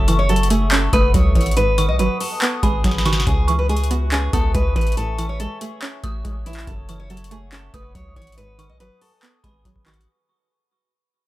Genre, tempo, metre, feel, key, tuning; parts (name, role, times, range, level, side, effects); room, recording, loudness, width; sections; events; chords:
hip hop, trap; 141 BPM; 4/4; half-time; A4 = 441 Hz
nylon-string guitar; melody; 0.0-10.1 s; E4 to D#5; -24 LUFS; equal; tape echo
string-like resonator pluck; accompaniment; 0.0-10.1 s; F#2 to C#4; -25 LUFS; right 3 dB; chorus
dark analog pad; sustained chords; 0.0-10.1 s; A4 to D#6; -33 LUFS; left 2 dB; chorus
long sustained 808-style bass; bass; 0.0-10.1 s; F#1 to C#2; -20 LUFS; equal
dark detuned synth bell; second line; 0.1-10.1 s; B5 to D#6; -29 LUFS; right 2 dB; chorus, phaser, tape echo
booming analog drum machine; drums; 0.1-10.1 s; handclaps, hi-hat, kick drum, snare drum; -21 LUFS; equal; overdrive
little or no reverb; -16 LUFS; side -16 dB against mid
0.0-10.1 A section
fade-out 0.0-10.1; drum fill 2.8-3.3
0.0 F#m7; 1.6 G#m7; 3.3 C#m7; 5.0 Amaj7; 6.7 F#m7; 8.4 G#m7